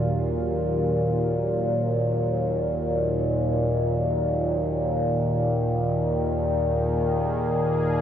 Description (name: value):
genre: dark ambient drone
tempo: free time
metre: none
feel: none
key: Eb minor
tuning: A4 = 441 Hz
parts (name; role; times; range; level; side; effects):
- sweeping resonant pad; sustained chords; 0.0-8.0 s; Eb3 to Ab4; -31 LUFS; right 1 dB; chorus
- overtone-sweeping drone; drone; 0.0-8.0 s; Eb2 to Bb2; -22 LUFS; equal; chorus, built-in reverb
room: wet cathedral reverb, RT60 6.9 s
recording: worn, warbling old tape, cassette tape, warbly pitch drift, nothing above 10.4 kHz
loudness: -22 LUFS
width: side -9 dB against mid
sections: 0.0-8.0 A section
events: none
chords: 0.0 Ebmadd9; 5.0 Absus2